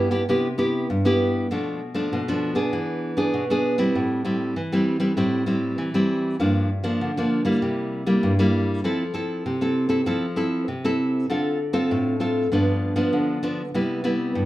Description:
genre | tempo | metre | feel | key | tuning
samba | 98 BPM | 4/4 | straight | C major | A4 = 440 Hz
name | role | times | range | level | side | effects
nylon-string guitar | solo | 0.0-14.5 s | G2 to A4 | -21 LUFS | equal | none
room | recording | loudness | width
moderate large studio reverb, RT60 0.9 s | band playing live in one room | -21 LUFS | side -15 dB against mid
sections
0.0-14.5 A section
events
none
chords
0.0 Cmaj7; 1.5 Bm7b5; 2.7 E7; 4.0 Am7; 6.4 Gm7; 7.6 C7; 8.8 Fmaj7; 11.3 Dm7; 12.5 G7; 13.7 Cmaj7

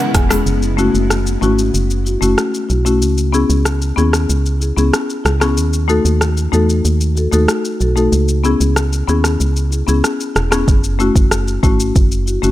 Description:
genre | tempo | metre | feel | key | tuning
dancehall | 94 BPM | 4/4 | straight | unclear | A4 = 439 Hz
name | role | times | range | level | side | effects
marimba with medium mallets | accompaniment | 0.0-12.5 s | G#3 to G#5 | -17 LUFS | left 3 dB | sidechain pumping
organ-like FM bass | bass | 0.1-12.5 s | E1 to E2 | -16 LUFS | right 1 dB | none
afro-pop drum kit | drums | 0.1-12.5 s | hi-hat, kick drum, rim click, shaker | -18 LUFS | equal | none
egg shaker | percussion | 0.2-0.5 s | none | -25 LUFS | right 9 dB | none
room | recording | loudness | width
digital ambience | none | -12 LUFS | side -14 dB against mid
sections
0.5-12.5 A section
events
marimba fill 0.0-0.5; kick muted 0.5-10.7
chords
0.5 F#m7; 3.0 C#m7; 5.6 D#dim; 8.1 C#m7; 10.7 F#m7

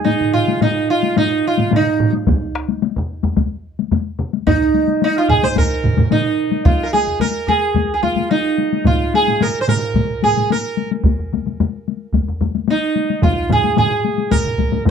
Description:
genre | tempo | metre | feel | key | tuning
japanese traditional, taiko drum ensemble | 109 BPM | 4/4 | straight | Bb suspended pentatonic | A4 = 438 Hz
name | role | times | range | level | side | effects
sitar | melody | 0.0-14.8 s | Eb4 to C5 | -17 LUFS | right 3 dB | none
solo taiko drums | percussion | 0.1-14.9 s | none | -20 LUFS | left 13 dB | none
taiko ensemble | percussion | 0.1-14.9 s | none | -21 LUFS | right 4 dB | none
taiko ensemble | percussion | 2.3-14.9 s | none | -21 LUFS | left 1 dB | none
taiko ensemble | percussion | 2.3-14.7 s | none | -20 LUFS | right 2 dB | none
room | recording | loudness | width
light reverb | dry, close 1970s-style studio recording | -15 LUFS | side -7 dB against mid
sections
0.0-6.7 A section; 6.7-14.9 B section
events
none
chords
none

